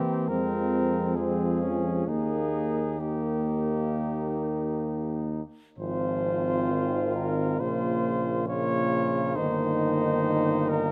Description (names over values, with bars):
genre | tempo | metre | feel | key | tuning
classical, hymn-like piece for brass band | 64-70 BPM | 4/4 | rubato | unclear | A4 = 435 Hz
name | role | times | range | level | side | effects
mellow cornet | melody | 0.0-10.9 s | G4 to Db5 | -34 LUFS | equal | none
mellow flugelhorn | second line | 0.0-10.9 s | C4 to F4 | -35 LUFS | equal | none
warm euphonium | accompaniment | 0.0-10.9 s | Db3 to Bb3 | -34 LUFS | equal | none
warm trombone section | accompaniment | 0.0-10.9 s | Ab3 to C4 | -34 LUFS | equal | none
clear tuba | bass | 0.3-10.9 s | G1 to F2 | -34 LUFS | equal | none
room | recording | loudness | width
light reverb | close, detailed microphones | -27 LUFS | mono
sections
0.0-10.9 A section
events
none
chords
0.3 Fm; 2.1 Eb; 5.8 Fm/Ab; 7.6 Bbm; 9.4 Eb/G